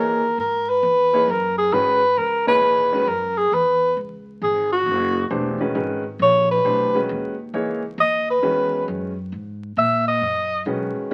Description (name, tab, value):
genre	modal jazz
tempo	134 BPM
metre	4/4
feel	swing 67% on 8ths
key	unclear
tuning	A4 = 440 Hz
part	clear alto saxophone	melody	0.0-10.6 s	F#4 to E5	-20 LUFS	equal	none
part	warm grand piano	accompaniment	0.0-11.1 s	A#2 to C#5	-27 LUFS	equal	none
part	upright bass	bass	0.0-11.1 s	E1 to A#2	-33 LUFS	equal	none
room	moderate studio reverb, RT60 0.8 s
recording	very old 78 rpm record, vinyl crackle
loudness	-20 LUFS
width	mono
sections	0.0-11.1 A section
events	alto saxophone solo 0.0-11.1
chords	0.0 G#m11; 2.2 C#m11; 9.3 G#m11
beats	| 0.39 0.83 1.28 1.73 | 2.18 2.62 3.07 3.52 | 3.97 4.41 4.86 5.31 | 5.75 6.20 6.65 7.09 | 7.54 7.99 8.43 8.88 | 9.33 9.77 10.22 10.67 | 11.12